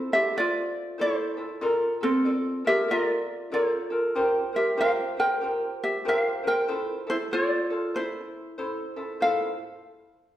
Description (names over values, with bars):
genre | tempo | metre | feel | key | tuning
hawaiian | 95 BPM | 4/4 | swing 62% on 8ths | F major | A4 = 440 Hz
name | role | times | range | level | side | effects
ukulele | melody | 0.0-9.6 s | C4 to G5 | -25 LUFS | equal | none
ukulele | accompaniment | 0.0-9.5 s | E4 to D5 | -28 LUFS | equal | none
room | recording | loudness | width
wet recital hall reverb, RT60 1.3 s | recorded in a church or concert hall | -24 LUFS | side -12 dB against mid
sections
0.0-9.2 A section; 9.2-10.4 B section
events
none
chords
0.0 Fmaj7; 1.6 Bbmaj7; 4.2 C7sus4; 6.7 Fmaj7